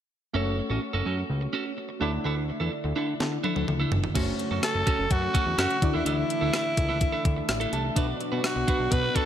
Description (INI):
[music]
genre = 1980s-style pop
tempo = 126 BPM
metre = 4/4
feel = straight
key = F# minor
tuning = A4 = 443 Hz
[part]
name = glassy digital keys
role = accompaniment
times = 0.3-9.3 s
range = B2 to A5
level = -33 LUFS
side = left 1 dB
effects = chorus
[part]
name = clean electric guitar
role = riff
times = 0.3-9.3 s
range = C#4 to B4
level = -32 LUFS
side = right 4 dB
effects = wide subtle chorus, digital delay
[part]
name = fat analog bass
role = bass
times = 0.3-9.1 s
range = F#1 to D3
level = -30 LUFS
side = equal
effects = none
[part]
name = clean 12-bit digital drum machine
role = drums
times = 3.2-9.3 s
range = crash cymbal, hi-hat, kick drum, rim click, snare drum, toms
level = -27 LUFS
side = left 1 dB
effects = overdrive
[part]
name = chorused pulse-width pad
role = sustained chords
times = 4.2-9.3 s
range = C#3 to F#4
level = -35 LUFS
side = left 1 dB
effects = none
[part]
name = raspy alto saxophone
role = melody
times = 4.6-9.3 s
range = E4 to B4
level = -28 LUFS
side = equal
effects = digital delay
[sound]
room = moderate plate reverb, RT60 2.4 s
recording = bright 1980s-style digital production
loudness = -24 LUFS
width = side -10 dB against mid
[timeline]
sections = 0.3-4.2 A section; 4.2-9.3 B section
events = drum fill 3.2-4.2; synth keys fill 7.3-8.0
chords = 0.3 F#m; 2.0 Dsus2; 4.2 F#m; 5.8 Dsus2; 8.0 Bm